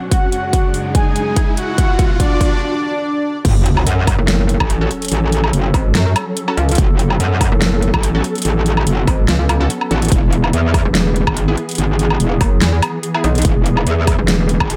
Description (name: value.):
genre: heavy wobble dubstep.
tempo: 144 BPM.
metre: 4/4.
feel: swing 54% on 16ths, half-time.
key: F# minor.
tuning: A4 = 440 Hz.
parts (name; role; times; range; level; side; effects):
soft supersaw; melody; 0.0-3.4 s; D4 to G#5; -22 LUFS; equal; tape echo.
clear studio string section; sustained chords; 0.0-14.8 s; E2 to A4; -26 LUFS; equal; sidechain pumping, low-pass filter.
riser and sub drop; sound effects; 0.0-5.1 s; none; -26 LUFS; equal; none.
big-room dance drum kit; drums; 0.1-14.8 s; crash cymbal, hi-hat, snare drum, woodblock; -22 LUFS; equal; overdrive.
electronic kick drum; drums; 0.1-14.7 s; none; -18 LUFS; equal; overdrive.
metallic wobble bass; bass; 3.4-14.8 s; E1 to F#2; -18 LUFS; equal; chorus, overdrive.
metallic wobble bass; bass; 4.2-14.6 s; E1 to F#2; -17 LUFS; equal; chorus, overdrive.
orchestra-hit-like synth stab; stabs; 4.8-13.2 s; B3 to A4; -28 LUFS; equal; built-in reverb, cassette tape, tape echo.
room: light reverb, digital ambience.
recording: none.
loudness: -15 LUFS.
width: mono.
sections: 0.0-3.4 A section; 3.4-14.8 B section.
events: build-up 0.0-3.4; riser 0.0-2.6; filter sweep on supersaw synth 0.0-3.4; drum fill 0.1-2.6; break 2.6-3.4; drop 3.4-14.8; impact 3.4-5.1.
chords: 0.1 F#sus2; 1.8 E; 3.4 F#m; 10.1 E.